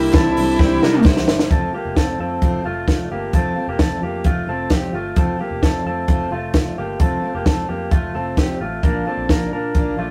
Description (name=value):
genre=jangly indie pop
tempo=131 BPM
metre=4/4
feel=straight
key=F major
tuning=A4 = 441 Hz
part: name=bluesy overdriven lead guitar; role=melody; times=0.0-1.0 s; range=E4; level=-19 LUFS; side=equal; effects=distortion
part: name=fingerpicked steel-string acoustic guitar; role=accompaniment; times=0.0-10.1 s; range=Bb2 to F4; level=-28 LUFS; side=equal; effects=none
part: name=rich studio string section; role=sustained chords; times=0.0-1.5 s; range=none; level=barely audible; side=none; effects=none
part: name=electric guitar through a small old amp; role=arpeggios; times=0.0-10.1 s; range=A3 to C5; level=-26 LUFS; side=equal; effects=none
part: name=vintage muted picked electric bass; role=bass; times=0.0-10.1 s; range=F1 to C3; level=-32 LUFS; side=equal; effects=none
part: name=compact cocktail drum kit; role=drums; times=0.1-9.9 s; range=hi-hat, kick drum, snare drum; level=-19 LUFS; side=equal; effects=none
part: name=group handclap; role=percussion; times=0.1-1.1 s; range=none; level=-38 LUFS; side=equal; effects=none
room=light reverb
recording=rough rehearsal-room recording, tube saturation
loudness=-19 LUFS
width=mono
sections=0.0-1.5 A section; 1.5-10.1 B section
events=drum fill 0.6-1.5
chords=0.0 Cadd9; 1.5 F; 8.8 Bb